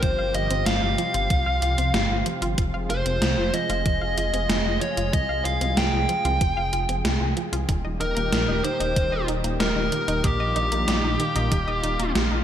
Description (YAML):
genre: synthwave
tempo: 94 BPM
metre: 4/4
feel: straight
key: F minor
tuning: A4 = 440 Hz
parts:
  - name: fuzz lead guitar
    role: melody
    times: 0.0-12.1 s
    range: G4 to G5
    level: -26 LUFS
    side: equal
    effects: distortion, digital delay
  - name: lush unison pad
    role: sustained chords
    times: 0.0-12.4 s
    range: Bb2 to Ab4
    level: -31 LUFS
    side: equal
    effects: chorus, sidechain pumping
  - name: analog pluck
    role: arpeggios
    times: 0.0-12.4 s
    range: Eb3 to F5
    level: -32 LUFS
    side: right 2 dB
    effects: chorus, digital delay
  - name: dark detuned saw bass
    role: bass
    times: 0.0-12.4 s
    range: Eb1 to C2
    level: -26 LUFS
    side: equal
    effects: none
  - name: electronic kick drum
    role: drums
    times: 0.0-11.6 s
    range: none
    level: -24 LUFS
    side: equal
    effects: overdrive
  - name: gated 80s digital drum machine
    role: drums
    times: 0.0-12.3 s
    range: hi-hat, snare drum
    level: -27 LUFS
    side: equal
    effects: gated reverb, gated reverb snare, overdrive
room: moderate lush hall reverb, RT60 2.6 s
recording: bright 1980s-style digital production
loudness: -21 LUFS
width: side -10 dB against mid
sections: 0.0-12.4 A section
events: none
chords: 0.0 Csus4; 2.6 Fm; 7.7 Eb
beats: | 0.03 0.67 1.30 1.94 | 2.58 3.22 3.86 4.50 | 5.13 5.77 6.41 7.05 | 7.69 8.32 8.96 9.60 | 10.24 10.88 11.52 12.15